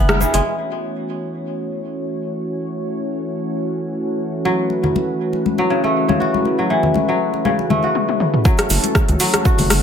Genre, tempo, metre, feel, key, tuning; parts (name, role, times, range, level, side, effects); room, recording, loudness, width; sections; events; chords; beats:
afro house; 120 BPM; 4/4; swing 54% on 16ths; F# minor; A4 = 439 Hz
warm analog pad; sustained chords; 0.0-9.8 s; E3 to C#5; -22 LUFS; right 1 dB; wide subtle chorus, sidechain pumping
kora; arpeggios; 0.0-9.8 s; B2 to F#4; -20 LUFS; left 1 dB; sidechain pumping, ping-pong delay
round analog bass; bass; 0.0-0.4, 8.7-9.8 s; F#1 to C#2; -19 LUFS; equal; sidechain pumping
deep house drum kit; drums; 0.1-0.4, 8.0-9.8 s; hi-hat, rim click, toms; -19 LUFS; equal; overdrive, low-pass filter on hats, studio reverb, low-pass filter on snare, low-pass filter on toms
congas; percussion; 0.1-0.3, 4.5-9.8 s; -22 LUFS; left 4 dB
egg shaker; percussion; 0.1-0.4, 8.4-9.8 s; -29 LUFS; right 3 dB
electronic kick drum; drums; 8.5-9.6 s; -16 LUFS; equal; overdrive, studio reverb
moderate digital room reverb, RT60 1.1 s, small room reverb; -16 LUFS; side -8 dB against mid
0.5-8.5 A section; 8.5-9.8 B section
band accent 0.1; filter sweep on analog synth pad 0.5-8.5; drum fill 8.0-8.5; drop 8.5-9.8
0.5 F#m7
| 0.45 0.95 1.45 1.95 | 2.45 2.95 3.45 3.95 | 4.45 4.95 5.45 5.95 | 6.45 6.95 7.45 7.95 | 8.45 8.95 9.45